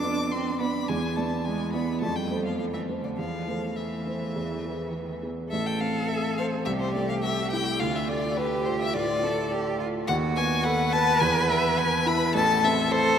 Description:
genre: quick classical-period movement for piano trio.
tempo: 105 BPM.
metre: 4/4.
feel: straight.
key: A minor.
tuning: A4 = 440 Hz.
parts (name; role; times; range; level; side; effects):
rich violin; melody; 0.0-13.2 s; B4 to D6; -28 LUFS; left 4 dB; none.
rich cello; second line; 0.0-13.2 s; D3 to B4; -29 LUFS; right 3 dB; none.
dark baby grand piano; accompaniment; 0.0-13.2 s; A1 to D5; -28 LUFS; right 1 dB; none.
room: wet cathedral reverb, RT60 6.4 s.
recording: in a vast, echoing space.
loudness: -24 LUFS.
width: side -8 dB against mid.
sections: 0.0-5.5 A section; 5.5-13.2 B section.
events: none.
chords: 0.0 Bdim/F; 0.9 E5; 2.0 F; 3.2 Am/E; 4.4 E; 5.5 Am; 6.7 Am/C; 7.8 Dm; 10.1 B7/D#; 11.2 E5; 12.3 Am.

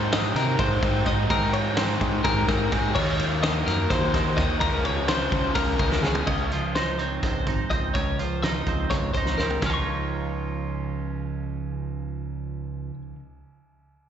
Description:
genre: math rock and midwest emo.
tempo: 252 BPM (eighths).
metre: 7/8.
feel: straight.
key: Db major.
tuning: A4 = 440 Hz.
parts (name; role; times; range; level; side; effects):
twelve-string electric guitar; arpeggios; 0.0-13.0 s; Ab4 to Db6; -28 LUFS; left 5 dB; wide subtle chorus, slapback echo.
overdriven electric guitar; riff; 0.0-6.3 s; Ab2 to Eb4; -28 LUFS; right 1 dB; slapback echo.
growling fingered electric bass; bass; 0.0-12.9 s; Ab1 to C3; -27 LUFS; equal; overdrive.
loose indie drum kit; drums; 0.1-9.7 s; crash cymbal, hi-hat, kick drum, ride cymbal, snare drum, toms; -27 LUFS; equal; none.
twelve-string electric guitar; accompaniment; 6.3-13.2 s; Ab2 to F4; -30 LUFS; right 10 dB; spring reverb, slapback echo.
room: little or no reverb.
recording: live gig heard through the venue's PA, recital hall reverb, nothing above 7.9 kHz.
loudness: -22 LUFS.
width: side -9 dB against mid.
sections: 0.0-6.3 A section; 6.3-9.6 B section; 9.6-13.0 C section.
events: drum fill 5.9-6.3, 9.3-9.6.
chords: 0.0 Ab9; 3.0 Ebm7; 4.6 Db6; 6.3 Dbmaj9; 9.6 Dbadd9.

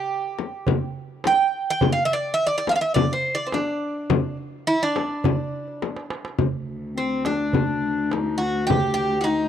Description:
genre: Turkish makam ensemble.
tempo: 105 BPM.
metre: 4/4.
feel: straight.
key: D makam ussak, D makam hicaz from 6.4 s.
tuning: A4 = 440 Hz.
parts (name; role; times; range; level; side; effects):
Greek bouzouki; melody; 0.0-9.5 s; C4 to G5; -23 LUFS; right 2 dB; none.
frame drum; percussion; 0.4-8.8 s; none; -24 LUFS; left 9 dB; none.
darbuka; percussion; 0.7-9.3 s; none; -27 LUFS; right 4 dB; none.
clear cello; drone; 6.4-9.5 s; D2; -29 LUFS; equal; none.
clear clarinet; second line; 7.0-9.5 s; C4 to G4; -25 LUFS; left 5 dB; none.
room: small room ambience.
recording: dry, close 1970s-style studio recording.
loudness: -21 LUFS.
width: side -9 dB against mid.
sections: 0.0-6.4 A section; 6.4-9.5 B section.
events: drum fill 5.8-6.4.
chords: none.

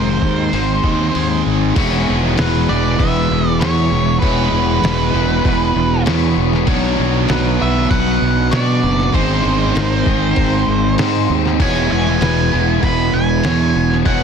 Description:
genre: rock, shoegaze and dream pop.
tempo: 98 BPM.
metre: 4/4.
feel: straight.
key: unclear.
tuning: A4 = 440 Hz.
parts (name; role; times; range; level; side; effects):
octave-fuzz lead guitar; melody; 0.0-14.2 s; B4 to B5; -22 LUFS; right 3 dB; distortion, analog delay.
electric guitar at the edge of break-up; arpeggios; 0.0-14.2 s; G#4 to C#6; -26 LUFS; left 4 dB; wide subtle chorus, analog delay.
biting overdriven guitar; riff; 0.0-14.2 s; E2 to G#4; -19 LUFS; right 12 dB; reverse reverb.
crunchy overdriven guitar; riff; 0.0-14.2 s; G#2 to E4; -20 LUFS; left 15 dB; analog chorus.
fuzz fingered electric bass; bass; 0.0-14.2 s; E1 to B2; -19 LUFS; equal; overdrive.
lo-fi sampler-style drum kit; drums; 0.2-14.2 s; crash cymbal, hi-hat, kick drum, snare drum; -22 LUFS; left 1 dB; none.
room: digital ambience.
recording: dense, heavily limited modern master.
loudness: -13 LUFS.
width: side -6 dB against mid.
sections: 0.0-1.8 A section; 1.8-14.2 B section.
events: kick and snare drop out 1.2-1.8.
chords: 0.0 G#add9; 1.8 E; 6.7 Bm; 9.1 G#add9; 11.6 E.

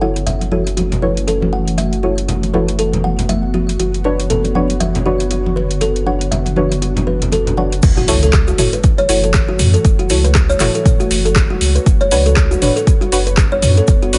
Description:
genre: afro house.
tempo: 119 BPM.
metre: 4/4.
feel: swing 58% on 16ths.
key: F# minor.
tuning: A4 = 441 Hz.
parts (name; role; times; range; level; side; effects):
ethereal airy pad; sustained chords; 0.0-14.2 s; D3 to C#5; -26 LUFS; equal; ensemble chorus, built-in reverb, sidechain pumping.
kalimba; arpeggios; 0.0-14.1 s; F#4 to F#5; -22 LUFS; equal; sidechain pumping, digital delay.
deep mellow chord stab; stabs; 0.0-14.2 s; D4 to C#5; -24 LUFS; equal; chorus, sidechain pumping, digital delay.
warm sub bass; bass; 0.0-14.2 s; F#1 to F#2; -20 LUFS; equal; tube saturation, sidechain pumping.
congas; percussion; 0.0-7.7 s; none; -24 LUFS; equal; none.
deep house drum kit; drums; 0.2-14.2 s; crash cymbal, handclaps, hi-hat, rim click, toms; -23 LUFS; equal; overdrive.
electronic kick drum; drums; 7.8-14.0 s; none; -15 LUFS; equal; overdrive.
tube shaker; percussion; 7.8-14.2 s; none; -30 LUFS; equal; none.
impact; sound effects; 7.8-9.8 s; none; -26 LUFS; equal; none.
room: light reverb, digital ambience.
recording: nothing above 10.9 kHz.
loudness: -15 LUFS.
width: mono.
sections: 0.0-7.8 A section; 7.8-14.2 B section.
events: filter sweep on ambient pad 0.0-7.8; drop 7.8-14.2; impact 7.8-9.8.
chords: 0.0 F#m7; 3.8 Bmadd9/F#; 7.8 F#m7; 11.9 Bmadd9/F#.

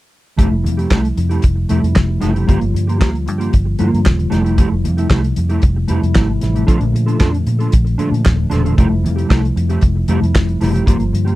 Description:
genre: disco.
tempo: 114 BPM.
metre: 4/4.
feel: straight.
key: F major.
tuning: A4 = 435 Hz.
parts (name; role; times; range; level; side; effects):
mellow electric guitar; accompaniment; 0.4-11.4 s; A3 to A4; -20 LUFS; right 3 dB; ensemble chorus.
mellow tine electric piano; accompaniment; 0.4-11.4 s; Bb2 to F4; -20 LUFS; left 2 dB; medium stereo tremolo.
vintage muted fingered electric bass; bass; 0.4-11.4 s; Eb1 to Bb2; -17 LUFS; equal; none.
warm soul drum kit; drums; 0.4-11.4 s; handclaps, hi-hat, kick drum, snare drum; -14 LUFS; equal; none.
room: little or no reverb.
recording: none.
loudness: -13 LUFS.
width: side -17 dB against mid.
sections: 0.4-11.4 A section.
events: none.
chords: 0.4 Fmaj9; 2.5 Gm7; 4.3 Fmaj9; 6.7 Bbmaj7; 8.8 Fmaj9.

